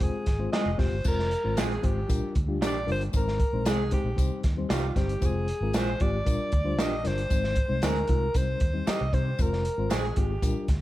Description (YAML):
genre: uptempo 1960s-style soul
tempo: 115 BPM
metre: 4/4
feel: straight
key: F dorian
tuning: A4 = 440 Hz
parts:
  - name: clear alto saxophone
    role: melody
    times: 0.0-10.7 s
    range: F4 to Eb5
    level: -32 LUFS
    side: equal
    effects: plate reverb
  - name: mellow reed electric piano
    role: accompaniment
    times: 0.0-10.7 s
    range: G3 to C5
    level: -33 LUFS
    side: left 4 dB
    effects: fast tremolo
  - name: vintage muted fingered electric bass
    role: bass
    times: 0.0-10.8 s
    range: F1 to C3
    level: -30 LUFS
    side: equal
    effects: none
  - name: crunchy breakbeat drum kit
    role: drums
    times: 0.0-10.8 s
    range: crash cymbal, hi-hat, kick drum, snare drum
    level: -28 LUFS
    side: equal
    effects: none
  - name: electric guitar through a small old amp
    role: stabs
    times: 0.5-10.0 s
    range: F3 to Ab4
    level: -34 LUFS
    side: right 4 dB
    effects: spring reverb
  - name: tambourine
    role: percussion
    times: 1.0-10.5 s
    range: none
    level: -44 LUFS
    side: left 6 dB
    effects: none
room: light reverb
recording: dark, warm production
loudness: -24 LUFS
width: side -15 dB against mid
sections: 0.0-1.1 A section; 1.1-10.8 A section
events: none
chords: 0.0 Fm; 2.1 Bb6; 3.1 Ab; 4.2 Cm; 5.2 Fm; 6.3 Bb6; 7.3 Ab; 8.3 Cm; 9.4 Fm